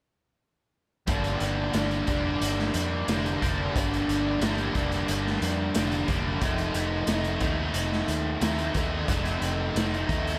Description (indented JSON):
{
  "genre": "rock, shoegaze and dream pop",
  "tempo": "90 BPM",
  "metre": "4/4",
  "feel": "straight",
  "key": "G minor",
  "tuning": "A4 = 440 Hz",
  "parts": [
    { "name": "overdriven electric guitar", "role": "riff", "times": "1.1-10.4 s", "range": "F2 to Eb4", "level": "-30 LUFS", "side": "equal", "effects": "lush chorus" },
    { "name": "vintage muted fingered electric bass", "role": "bass", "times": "1.1-10.4 s", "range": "F1 to F2", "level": "-34 LUFS", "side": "equal", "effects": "none" },
    { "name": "raw garage drum kit", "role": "drums", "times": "1.1-10.4 s", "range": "hi-hat, kick drum, snare drum", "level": "-33 LUFS", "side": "equal", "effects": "none" }
  ],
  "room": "light reverb, small room ambience",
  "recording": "none",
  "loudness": "-27 LUFS",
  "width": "mono",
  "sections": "1.1-10.4 A section",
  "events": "none",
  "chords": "1.1 Gm7; 6.4 F5",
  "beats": "| 1.08 1.75 2.41 3.08 | 3.75 4.42 5.08 5.75 | 6.42 7.08 7.75 8.42 | 9.09 9.75"
}